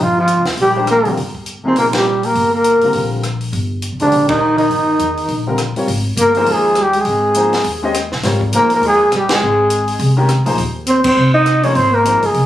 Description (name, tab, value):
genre	modal jazz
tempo	204 BPM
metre	4/4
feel	swing 60% on 8ths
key	Eb major, Ab major from 5.9 s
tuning	A4 = 440 Hz
part	trumpet with bucket mute	melody	0.0-12.5 s	D4 to Eb5	-14 LUFS	equal	plate reverb
part	breathy alto saxophone	second line	0.0-12.5 s	D3 to Eb4	-18 LUFS	right 2 dB	none
part	upright bass	bass	0.0-12.5 s	G1 to Fb2	-20 LUFS	equal	none
part	compact cocktail drum kit	drums	0.3-12.4 s	crash cymbal, hi-hat, kick drum, ride cymbal, rim click, snare drum	-24 LUFS	left 1 dB	none
part	warm baby grand piano	accompaniment	0.7-12.2 s	C3 to Eb5	-20 LUFS	left 3 dB	none
room	moderate studio ambience, RT60 0.5 s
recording	recorded on a phone in the room, studio reverb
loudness	-12 LUFS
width	side -12 dB against mid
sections	0.0-5.9 A section; 5.9-12.5 B section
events	band accent 1.9, 4.3, 9.3, 11.0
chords	0.0 Ebmaj9; 5.9 Abadd9